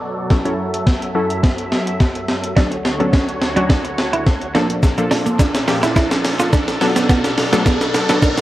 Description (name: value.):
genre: dance-pop.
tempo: 106 BPM.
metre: 4/4.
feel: straight.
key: D major.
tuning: A4 = 441 Hz.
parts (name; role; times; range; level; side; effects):
filtered supersaw swell; sustained chords; 0.0-8.4 s; D2 to E5; -23 LUFS; equal; sidechain pumping, low-pass filter.
wide unison pluck; accompaniment; 0.3-8.4 s; F3 to A4; -21 LUFS; left 1 dB; sidechain pumping, low-pass filter.
gated 80s digital drum machine; drums; 0.3-8.4 s; hi-hat, kick drum, shaker, snare drum; -16 LUFS; equal; gated reverb, gated reverb snare, overdrive.
clean electric guitar; riff; 2.6-8.4 s; A3 to F4; -21 LUFS; right 3 dB; lush chorus, low-pass filter.
riser; sound effects; 4.4-8.4 s; none; -28 LUFS; left 1 dB; none.
room: light reverb.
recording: worn, warbling old tape, cassette tape, warbly pitch drift.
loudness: -14 LUFS.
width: side -15 dB against mid.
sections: 0.0-8.4 A section.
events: build-up 0.0-8.4; drum fill 0.0-8.4; filter sweep 0.0-8.4; riser 4.4-8.4.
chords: 0.3 F#m7; 2.6 Dmaj7; 4.5 Bbmaj7; 6.8 Bm7.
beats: | 0.30 0.87 1.43 2.00 | 2.57 3.13 3.70 4.26 | 4.83 5.40 5.96 6.53 | 7.09 7.66 8.23.